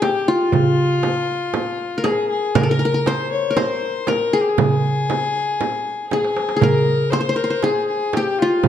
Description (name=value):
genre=Arabic maqam ensemble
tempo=118 BPM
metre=4/4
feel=straight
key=unclear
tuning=A4 = 441 Hz
part: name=qanun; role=melody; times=0.0-8.7 s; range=F4 to C5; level=-20 LUFS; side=left 2 dB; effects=none
part: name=warm violin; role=second line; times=0.0-8.7 s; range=F4 to Db5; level=-23 LUFS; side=left 4 dB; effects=none
part: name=darbuka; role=percussion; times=0.0-8.7 s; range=none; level=-22 LUFS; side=right 3 dB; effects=none
part: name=frame drum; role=percussion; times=0.0-8.7 s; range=none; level=-24 LUFS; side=right 6 dB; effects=none
room=moderate recital hall reverb, RT60 1.4 s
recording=dark, warm production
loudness=-17 LUFS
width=side -10 dB against mid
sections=0.0-8.7 A section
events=drum fill 6.1-6.6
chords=none